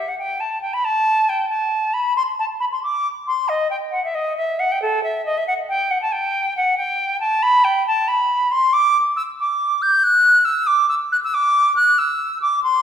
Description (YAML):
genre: classical, baroque-style fantasia for unaccompanied flute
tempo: 91 BPM (dotted quarters)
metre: 12/8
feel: rubato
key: unclear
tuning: A4 = 438 Hz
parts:
  - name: silver concert flute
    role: solo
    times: 0.0-12.8 s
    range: A4 to G6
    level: -16 LUFS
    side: equal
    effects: none
room: wet recital hall reverb, RT60 1.6 s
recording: heard from further back in the room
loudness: -16 LUFS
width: side -9 dB against mid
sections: 0.0-12.8 A section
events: none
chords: none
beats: 0.16 | 0.83 1.49 2.16 2.83 | 3.49 4.15 4.81 5.46 | 6.12 6.77 7.42 8.08 | 8.73 9.38 10.03 10.68 | 11.34 11.99 12.64